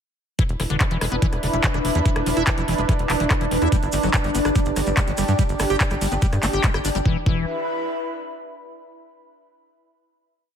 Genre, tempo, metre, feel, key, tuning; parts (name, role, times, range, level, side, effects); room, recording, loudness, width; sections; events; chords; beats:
psychedelic trance; 144 BPM; 4/4; straight; A4 = 440 Hz
evolving wavetable pad; sustained chords; 0.8-7.1 s; D4; -27 LUFS; right 2 dB; chorus, built-in reverb, sidechain pumping
liquid acid bass; riff; 0.4-7.5 s; D3 to G4; -27 LUFS; moving between left 8 dB and right 8 dB; chorus, auto-pan, sidechain pumping, dub echo
electronic kick drum; drums; 0.4-7.3 s; -21 LUFS; equal
garage drum kit; drums; 0.4-7.0 s; handclaps, hi-hat, rim click; -26 LUFS; equal
airy breathy pad; texture; 0.4-8.7 s; D4 to B5; -28 LUFS; equal; chorus, sidechain pumping
tight sequencer bass; bass; 0.5-7.5 s; E1 to G2; -25 LUFS; equal
tube shaker; percussion; 3.7-7.0 s; -35 LUFS; right 3 dB
light reverb, digital ambience; -19 LUFS; side -8 dB against mid
0.4-7.1 drop; 7.1-8.7 final chord
drop 0.4-7.1
0.4 E5; 3.7 G5; 7.1 E5
| 0.39 0.81 1.22 1.64 | 2.06 2.47 2.89 3.31 | 3.72 4.14 4.55 4.97 | 5.39 5.80 6.22 6.64 | 7.05 7.47 7.89 8.30